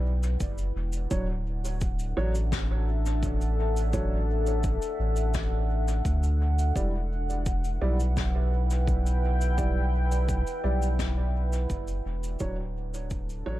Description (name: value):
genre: ambient dub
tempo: 85 BPM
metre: 4/4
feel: straight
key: E minor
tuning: A4 = 440 Hz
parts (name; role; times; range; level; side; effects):
- deep dark ambient pad; sustained chords; 0.0-13.6 s; D4 to G5; -34 LUFS; left 1 dB; chorus, built-in reverb
- soft dub sub bass; bass; 0.0-13.6 s; D1 to D2; -26 LUFS; equal; none
- cabasa and snare drum; drums; 0.2-13.4 s; none; -41 LUFS; left 4 dB; dub echo
- electronic kick drum; drums; 0.4-13.3 s; none; -32 LUFS; equal; overdrive
- dark upright piano; stabs; 1.1-13.6 s; F#3 to D5; -36 LUFS; right 2 dB; vintage 12-bit sampler grit, dub echo
room: little or no reverb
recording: none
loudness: -25 LUFS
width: side -15 dB against mid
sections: 0.0-13.6 A section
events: fade-out 10.5-13.6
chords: 0.0 Em; 1.1 D; 6.8 Em7; 12.4 Dmaj7